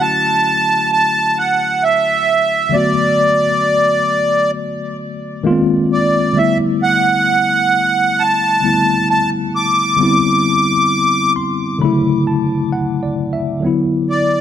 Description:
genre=R&B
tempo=66 BPM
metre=4/4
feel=straight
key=D major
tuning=A4 = 440 Hz
part: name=accordion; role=melody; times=0.0-14.4 s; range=D5 to D6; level=-14 LUFS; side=right 1 dB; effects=light tremolo tuning, tape echo
part: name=mellow tine electric piano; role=accompaniment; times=0.0-14.4 s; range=C#3 to C6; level=-17 LUFS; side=left 2 dB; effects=medium stereo tremolo
room=light reverb, small room ambience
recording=none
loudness=-12 LUFS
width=side -10 dB against mid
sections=0.0-13.6 A section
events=tine electric piano fill 10.9-13.6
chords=0.0 Dmaj7; 2.7 Bm7; 5.5 G#69; 6.4 G69; 10.0 Cmaj9; 11.8 Dmaj9; 13.6 D69

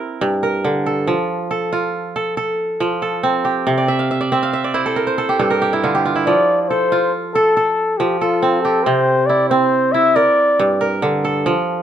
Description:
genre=west african traditional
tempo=92 BPM (dotted quarters)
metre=12/8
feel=straight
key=F major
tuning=A4 = 439 Hz
part: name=kora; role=arpeggios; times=0.0-11.8 s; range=G2 to F5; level=-17 LUFS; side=right 2 dB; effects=none
part: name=mellow flugelhorn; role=melody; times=6.3-11.0 s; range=F4 to E5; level=-15 LUFS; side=left 2 dB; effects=none
room=light reverb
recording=minimal, uncompressed stereo recording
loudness=-15 LUFS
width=side -9 dB against mid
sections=0.0-11.8 A section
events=kora fill 3.8-6.3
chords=0.0 Gm; 1.1 F; 3.7 C; 5.0 G5; 6.3 F; 8.9 C; 10.2 Gm

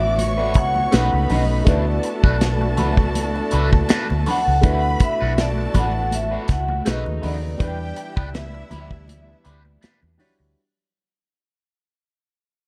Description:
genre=lush 1970s-style soul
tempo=81 BPM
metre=4/4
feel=swing 54% on 16ths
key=D major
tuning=A4 = 440 Hz
part: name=vibraphone with medium hard mallets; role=melody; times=0.0-9.8 s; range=D5 to F#5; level=-27 LUFS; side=equal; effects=none
part: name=warm studio violin section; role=second line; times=0.0-9.4 s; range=E4 to D6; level=-33 LUFS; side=equal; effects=none
part: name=warm grand piano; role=accompaniment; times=0.0-10.6 s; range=C#3 to C#5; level=-33 LUFS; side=equal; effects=none
part: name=warm studio string section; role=sustained chords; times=0.0-10.5 s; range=E3 to F#4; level=-34 LUFS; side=equal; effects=none
part: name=electric guitar at the edge of break-up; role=riff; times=0.0-10.4 s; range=A3 to B4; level=-32 LUFS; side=equal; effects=wah
part: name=vintage muted fingered electric bass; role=bass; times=0.0-10.5 s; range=A1 to E2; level=-25 LUFS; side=equal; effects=none
part: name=modern studio drum kit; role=drums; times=0.2-10.4 s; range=hi-hat, kick drum, snare drum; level=-21 LUFS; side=equal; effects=none
part: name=congas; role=percussion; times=0.2-10.4 s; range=none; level=-32 LUFS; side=equal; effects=none
room=small room ambience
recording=dark, warm production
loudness=-20 LUFS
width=mono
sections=0.0-4.6 A section; 4.6-10.6 B section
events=fade-out 4.6-10.6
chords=0.0 D6; 0.9 B7; 1.7 D6; 6.9 B7; 7.6 Em7

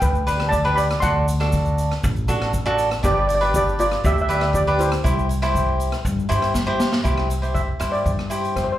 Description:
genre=calypso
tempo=119 BPM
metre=4/4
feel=straight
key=C major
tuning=A4 = 440 Hz
part: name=steel pan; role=melody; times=0.0-8.8 s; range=E4 to C6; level=-22 LUFS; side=right 1 dB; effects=slapback echo
part: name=upright bass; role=bass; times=0.0-8.8 s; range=G1 to G2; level=-23 LUFS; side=equal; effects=none
part: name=street-band drum kit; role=drums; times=0.0-8.7 s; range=hi-hat, kick drum, rim click, snare drum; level=-26 LUFS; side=equal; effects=none
part: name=egg shaker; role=percussion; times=0.0-8.7 s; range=none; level=-39 LUFS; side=right 1 dB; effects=none
part: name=cavaquinho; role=accompaniment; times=0.3-8.7 s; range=D4 to C5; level=-23 LUFS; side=equal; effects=slapback echo
room=moderate club reverb, RT60 0.8 s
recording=live gig heard through the venue's PA, club reverb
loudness=-18 LUFS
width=side -13 dB against mid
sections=0.0-7.1 A section; 7.1-8.8 B section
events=drum fill 6.5-7.1; steel pan solo 7.1-8.8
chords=0.0 G; 1.0 D7; 3.0 G6; 5.0 C

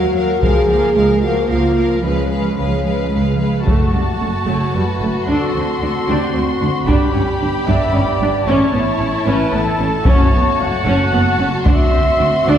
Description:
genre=cinematic, epic orchestral film score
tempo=112 BPM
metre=3/4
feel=straight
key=F# phrygian from 3.7 s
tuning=A4 = 438 Hz
part: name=warm symphonic violin section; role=melody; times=0.0-12.6 s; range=F5 to C6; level=-26 LUFS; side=left 3 dB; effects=none
part: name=rich symphonic violin section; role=second line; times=0.0-12.6 s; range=E4 to Cb5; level=-25 LUFS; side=left 3 dB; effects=none
part: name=warm symphonic viola section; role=accompaniment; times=0.0-12.6 s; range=F3 to D4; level=-20 LUFS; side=right 1 dB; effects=none
part: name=mellow French horn section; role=sustained chords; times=0.0-12.6 s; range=A3 to Ab4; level=-22 LUFS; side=left 1 dB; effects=none
part: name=clear symphonic double bass section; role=bass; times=0.0-12.6 s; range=F#1 to Eb2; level=-21 LUFS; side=right 2 dB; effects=none
part: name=dark symphonic cello section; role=bass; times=0.0-12.5 s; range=D2 to Bb3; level=-23 LUFS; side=right 2 dB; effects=none
part: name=solo taiko drums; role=drums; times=0.4-12.2 s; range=none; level=-17 LUFS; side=equal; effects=none
part: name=dark trumpet section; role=stabs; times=3.7-12.6 s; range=F#4 to F#5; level=-20 LUFS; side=right 1 dB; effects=none
room=wet scoring stage reverb, RT60 1.6 s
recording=heard from further back in the room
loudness=-13 LUFS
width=side -9 dB against mid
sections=0.0-3.7 A section; 3.7-12.6 B section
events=none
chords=0.4 Bbm7/Db; 2.0 Db7; 3.7 F#m; 5.3 D7; 6.9 G; 8.5 A; 10.1 F#m; 11.7 D7

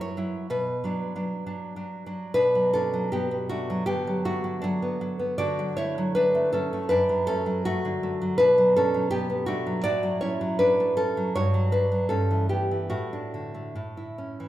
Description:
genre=romantic piece for solo classical guitar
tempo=61-82 BPM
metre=2/4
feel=rubato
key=B minor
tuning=A4 = 440 Hz
part: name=nylon-string guitar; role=solo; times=0.0-14.5 s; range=F#2 to D5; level=-23 LUFS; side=equal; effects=none
room=wet recital hall reverb, RT60 1.7 s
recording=recorded in a church or concert hall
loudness=-23 LUFS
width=side -14 dB against mid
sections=0.0-2.3 A section; 2.3-14.5 B section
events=none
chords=0.0 F#7(no3); 0.5 Bm; 3.9 Bm/D; 5.4 D; 6.9 D/F#; 8.4 Bm; 9.8 F#m/A; 11.3 Gmaj7; 12.1 Em/G; 12.9 D/A; 13.8 A

